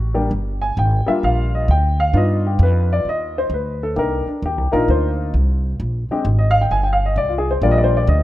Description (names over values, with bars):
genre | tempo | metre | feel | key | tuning
jazz piano trio | 131 BPM | 4/4 | swing 66% on 8ths | unclear | A4 = 440 Hz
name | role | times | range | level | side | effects
warm baby grand piano | melody | 0.0-8.2 s | G3 to Ab5 | -19 LUFS | left 1 dB | none
upright bass | bass | 0.0-8.2 s | G1 to G2 | -18 LUFS | equal | none
room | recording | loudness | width
light reverb, studio reverb | rough home demo mix | -16 LUFS | side -14 dB against mid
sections
0.0-8.2 A section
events
grand piano solo 0.0-8.2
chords
0.3 Gm7; 2.1 G7b13; 4.0 Cm9; 5.8 Bb7sus2; 7.6 Ebmaj7